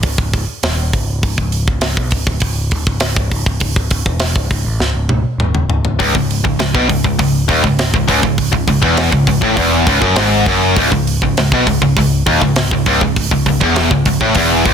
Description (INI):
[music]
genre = heavy metal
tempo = 101 BPM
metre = 4/4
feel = straight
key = C# minor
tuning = A4 = 440 Hz
[part]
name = overdriven picked electric bass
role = bass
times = 0.0-14.7 s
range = C#1 to B1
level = -18 LUFS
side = equal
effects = none
[part]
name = tight metal drum kit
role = drums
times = 0.0-14.7 s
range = hi-hat, kick drum, snare drum, toms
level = -17 LUFS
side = equal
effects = soft clipping on kick
[part]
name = tight distorted guitar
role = riff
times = 6.0-14.7 s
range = C#2 to B2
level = -16 LUFS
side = left 12 dB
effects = distortion
[part]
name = tight distorted guitar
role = riff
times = 6.0-14.7 s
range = C#2 to B2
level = -16 LUFS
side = right 11 dB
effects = distortion
[sound]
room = studio reverb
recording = dense, heavily limited modern master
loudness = -12 LUFS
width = side -7 dB against mid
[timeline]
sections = 0.0-14.7 A section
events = drum fill 4.8-6.0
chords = 0.0 C#m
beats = 0.04 0.63 | 1.23 1.83 2.42 3.02 | 3.62 4.21 4.81 5.40 | 6.00 6.59 7.19 7.78 | 8.38 8.98 9.57 10.17 | 10.77 11.37 11.96 12.56 | 13.16 13.76 14.36